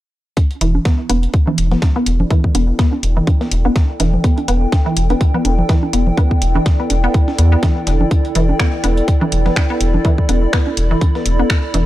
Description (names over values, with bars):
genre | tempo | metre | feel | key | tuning
minimal techno | 124 BPM | 4/4 | swing 56% on 16ths | E minor | A4 = 440 Hz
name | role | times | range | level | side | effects
breakbeat sampler-style drum kit | drums | 0.4-11.9 s | hi-hat, snare drum | -32 LUFS | right 1 dB | high-pass filter on hats, high-pass filter on snare, high-pass filter on room
electronic kick drum | drums | 0.4-11.6 s | none | -14 LUFS | equal | none
bongos and congas | percussion | 0.4-11.8 s | none | -23 LUFS | right 2 dB | tape echo
warbly tape-like pad | texture | 1.6-11.9 s | E4 to B5 | -23 LUFS | right 1 dB | chorus, built-in reverb, sidechain pumping
resonant blip pluck | riff | 0.6-11.8 s | D3 to B3 | -21 LUFS | equal | wide subtle chorus, sidechain pumping, analog delay
round analog bass | bass | 0.6-11.9 s | E1 to E2 | -15 LUFS | equal | sidechain pumping
garage drum kit | drums | 0.6-11.8 s | finger snaps, hi-hat | -22 LUFS | equal | none
room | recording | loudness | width
little or no reverb | dry, gritty hardware recording | -13 LUFS | side -15 dB against mid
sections
0.4-11.9 A section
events
none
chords
0.4 Em7